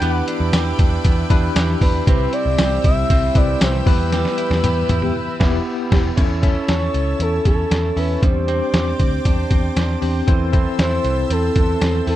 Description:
1980s-style pop; 117 BPM; 4/4; straight; A4 = 441 Hz
expressive synth lead; melody; 0.0-12.2 s; A4 to G5; -23 LUFS; equal; chorus, slapback echo
bell-like tine electric piano; accompaniment; 0.0-12.2 s; B3 to E5; -24 LUFS; left 2 dB; medium stereo tremolo
overdriven electric guitar; accompaniment; 0.0-6.1 s; C3 to E4; -32 LUFS; left 5 dB; wide subtle chorus
lush unison pad; sustained chords; 0.0-12.2 s; C4 to E6; -30 LUFS; right 1 dB; chorus
direct-recorded clean electric guitar; riff; 0.0-12.2 s; E3 to A4; -29 LUFS; right 7 dB; wide subtle chorus, slapback echo
vintage muted picked electric bass; bass; 0.0-12.2 s; E1 to E2; -21 LUFS; equal
trip hop sampler-style drum kit; drums; 0.0-12.2 s; crash cymbal, hi-hat, kick drum, snare drum, tambourine, toms; -18 LUFS; equal
mellow synth brass; stabs; 5.0-6.1 s; B3 to G4; -26 LUFS; left 2 dB; chorus
little or no reverb; dry, close 1970s-style studio recording; -15 LUFS; side -13 dB against mid
0.0-6.2 A section; 6.2-12.2 B section
drum fill 4.1-6.2; band accent 4.1-6.2
0.0 Em7; 2.1 C; 3.9 Em; 6.2 A; 8.2 Csus2; 10.3 Am
| 0.02 0.53 1.05 1.56 | 2.07 2.58 3.10 3.61 | 4.12 4.64 5.15 5.66 | 6.17 6.69 7.20 7.71 | 8.23 8.74 9.25 9.76 | 10.28 10.79 11.30 11.82

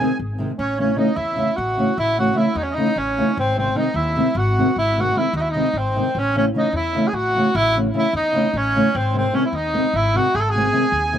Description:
balkan folk, Balkan wedding band; 302 BPM (eighths); 7/8; straight; A4 = 440 Hz
warm tenor saxophone; melody; 0.0-11.2 s; B#3 to A4; -21 LUFS; equal; slapback echo
accordion; second line; 0.0-11.2 s; B#4 to A5; -26 LUFS; right 3 dB; light tremolo tuning, slapback echo
nylon-string guitar; accompaniment; 0.0-11.2 s; B#2 to C#4; -21 LUFS; equal; slapback echo
upright bass; bass; 0.0-11.2 s; G#1 to E2; -25 LUFS; equal
little or no reverb; recorded outdoors, with no room sound; -17 LUFS; side -10 dB against mid
0.6-11.2 A section
0.0 G#; 0.6 A; 3.4 G#; 6.2 A; 8.9 G#
0.19 0.39 | 0.59 0.79 0.98 1.18 1.38 1.58 1.78 | 1.98 2.18 2.38 2.57 2.77 2.97 3.17 | 3.37 3.57 3.77 3.96 4.16 4.36 4.56 | 4.76 4.96 5.16 5.36 5.55 5.75 5.95 | 6.15 6.35 6.55 6.75 6.95 7.15 7.35 | 7.54 7.74 7.94 8.14 8.34 8.54 8.74 | 8.94 9.14 9.34 9.54 9.74 9.94 10.14 | 10.34 10.54 10.74 10.94 11.14

